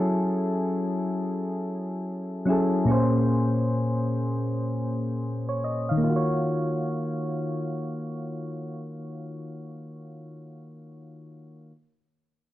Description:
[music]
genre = hip hop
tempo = 76 BPM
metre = 4/4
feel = swing 61% on 16ths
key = Eb minor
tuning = A4 = 438 Hz
[part]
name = soft electric-piano-like synth keys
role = accompaniment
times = 0.0-11.7 s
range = Bb2 to F5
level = -25 LUFS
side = left 1 dB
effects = chorus, cassette tape, low-pass filter
[sound]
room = moderate studio reverb, RT60 0.6 s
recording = dark, warm production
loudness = -24 LUFS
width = side -14 dB against mid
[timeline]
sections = 0.0-6.0 A section; 6.0-9.2 B section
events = filter sweep on synth keys 0.0-6.0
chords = 0.0 Gbm9; 2.9 Bbm9; 6.0 Ebm9

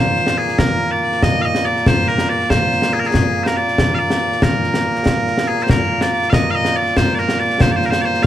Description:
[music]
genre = scottish traditional, Scottish pipe music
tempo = 94 BPM (dotted quarters)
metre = 6/8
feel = straight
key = Bb mixolydian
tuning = A4 = 440 Hz
[part]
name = loud bright bagpipes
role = melody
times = 0.0-8.3 s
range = Bb2 to F5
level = -17 LUFS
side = right 1 dB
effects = none
[part]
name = concert snare drum and concert bass drum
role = drums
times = 0.2-8.3 s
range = none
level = -17 LUFS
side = left 1 dB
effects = none
[sound]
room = light reverb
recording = close, detailed microphones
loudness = -14 LUFS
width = side -12 dB against mid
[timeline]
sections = 0.0-5.7 A section; 5.7-8.3 A section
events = none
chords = none

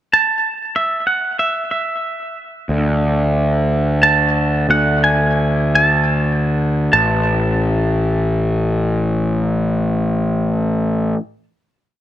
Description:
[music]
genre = post-rock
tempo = 50-62 BPM (dotted quarters)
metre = 6/8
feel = straight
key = unclear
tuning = A4 = 442 Hz
[part]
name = twangy electric guitar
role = melody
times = 0.1-11.1 s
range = E5 to A5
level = -16 LUFS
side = right 2 dB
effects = spring reverb, tape echo
[part]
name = fuzz picked electric bass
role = bass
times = 2.7-11.1 s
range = A1 to D2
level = -16 LUFS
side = equal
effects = overdrive
[sound]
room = light reverb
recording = none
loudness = -15 LUFS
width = side -12 dB against mid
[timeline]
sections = 0.0-6.9 A section; 6.9-11.7 final note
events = slowing down 2.7-6.9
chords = 0.0 N.C.; 2.7 D5; 6.9 N.C.

